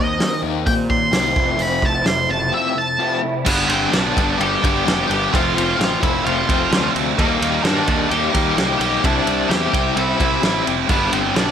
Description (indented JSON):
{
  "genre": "quiet-loud alternative rock",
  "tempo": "129 BPM",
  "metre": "4/4",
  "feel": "straight",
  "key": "unclear",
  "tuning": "A4 = 437 Hz",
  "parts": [
    { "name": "octave-fuzz lead guitar", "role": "melody", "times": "0.0-11.5 s", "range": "Bb3 to C6", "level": "-21 LUFS", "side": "equal", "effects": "distortion, slapback echo" },
    { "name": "electric guitar through a small old amp", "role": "arpeggios", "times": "0.0-3.5 s", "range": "Eb3 to G4", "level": "-26 LUFS", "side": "right 3 dB", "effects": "ensemble chorus" },
    { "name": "overdriven semi-hollow guitar", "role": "riff", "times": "0.0-11.5 s", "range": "F2 to E4", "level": "-23 LUFS", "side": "left 12 dB", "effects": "tremolo" },
    { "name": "fuzz picked electric bass", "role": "bass", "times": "0.0-11.5 s", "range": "F1 to Eb3", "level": "-25 LUFS", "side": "right 1 dB", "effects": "overdrive" },
    { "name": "loose indie drum kit", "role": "drums", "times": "0.2-11.5 s", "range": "crash cymbal, hi-hat, kick drum, ride cymbal, snare drum", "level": "-21 LUFS", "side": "right 1 dB", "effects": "none" },
    { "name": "scooped high-gain guitar", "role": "riff", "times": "3.4-11.5 s", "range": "F2 to E4", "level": "-22 LUFS", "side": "right 13 dB", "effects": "distortion" }
  ],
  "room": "light reverb, small room ambience",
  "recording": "none",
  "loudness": "-16 LUFS",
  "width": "side -8 dB against mid",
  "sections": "0.0-3.5 A section; 3.5-11.5 B section",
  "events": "none",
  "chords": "0.0 Eb6; 1.4 Fmaj7; 3.5 G; 5.3 F; 7.2 Eb; 9.0 Cadd9; 10.9 G"
}